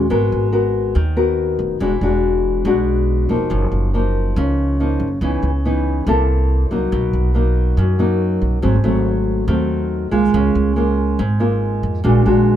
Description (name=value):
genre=bossa nova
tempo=141 BPM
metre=4/4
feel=straight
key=unclear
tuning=A4 = 441 Hz
part: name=nylon-string guitar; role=accompaniment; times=0.0-12.6 s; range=Gb2 to Bb4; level=-17 LUFS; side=left 1 dB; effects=none
part: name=upright bass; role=bass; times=0.0-12.6 s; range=E1 to F#2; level=-18 LUFS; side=right 1 dB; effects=none
room=little or no reverb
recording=close, detailed microphones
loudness=-15 LUFS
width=side -10 dB against mid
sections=0.1-12.6 A section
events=none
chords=0.1 Abm9; 1.8 E9; 3.5 Gb6; 5.2 Dbm9; 6.1 C6; 6.9 Bmaj7; 8.6 Ab7b9; 10.3 Db6; 12.0 Bb7b13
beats=| 0.10 0.52 0.95 1.38 | 1.80 2.23 2.65 3.08 | 3.51 3.93 4.36 4.79 | 5.21 5.64 6.07 6.49 | 6.92 7.34 7.77 8.20 | 8.62 9.05 9.48 9.91 | 10.33 10.76 11.19 11.61 | 12.04 12.47